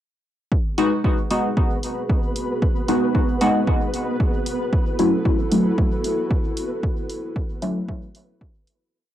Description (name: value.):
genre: dub techno.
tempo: 114 BPM.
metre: 4/4.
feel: swing 55% on 16ths.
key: G# phrygian.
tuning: A4 = 440 Hz.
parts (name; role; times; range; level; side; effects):
dark analog pad; sustained chords; 0.5-8.9 s; B3 to A4; -29 LUFS; equal; chorus, sidechain pumping, cassette tape.
electronic kick drum; drums; 0.5-8.5 s; none; -21 LUFS; equal; cassette tape.
flickering grainy texture; texture; 1.3-8.9 s; B3 to B4; -30 LUFS; equal; built-in reverb, sidechain pumping, cassette tape.
deep mellow chord stab; stabs; 0.8-7.8 s; F#3 to F#4; -21 LUFS; equal; chorus, phaser, sidechain pumping, cassette tape, dub echo.
electronic hi-hat; drums; 0.8-8.8 s; none; -34 LUFS; right 1 dB; cassette tape.
room: moderate studio reverb, RT60 0.5 s.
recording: home recording on cassette.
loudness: -19 LUFS.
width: side -12 dB against mid.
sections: 0.5-8.9 groove.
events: filter sweep on synth stab 0.5-8.9; fade-out 6.1-8.9.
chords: 0.5 G#m7; 4.7 F#m7.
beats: | 0.52 1.04 1.57 2.10 | 2.62 3.15 3.67 4.20 | 4.73 5.25 5.78 6.31 | 6.83 7.36 7.88 8.41.